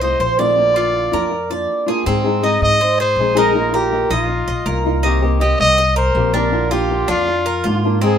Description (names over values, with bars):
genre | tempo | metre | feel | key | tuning
latin | 161 BPM | 4/4 | straight | unclear | A4 = 439 Hz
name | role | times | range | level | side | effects
warm trumpet | melody | 0.0-8.2 s | F4 to Eb5 | -17 LUFS | equal | none
flamenco guitar | accompaniment | 0.0-8.2 s | C3 to Ab4 | -20 LUFS | left 3 dB | none
Cuban tres | arpeggios | 0.0-8.2 s | C4 to Eb5 | -20 LUFS | right 2 dB | none
upright bass | bass | 0.0-8.2 s | Bb1 to Ab2 | -20 LUFS | equal | none
room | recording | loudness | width
light reverb | minimal, uncompressed stereo recording | -14 LUFS | side -8 dB against mid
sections
0.0-2.1 A section; 2.1-8.2 B section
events
none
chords
0.0 F7; 0.6 Bb; 2.1 Ab; 3.6 Ebsus2/Bb; 5.0 Cm7; 6.5 Bb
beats
0.20 | 0.57 0.94 1.31 1.69 | 2.06 2.43 2.81 3.18 | 3.55 3.92 4.29 4.67 | 5.04 5.41 5.78 6.16 | 6.53 6.90 7.27 7.64 | 8.02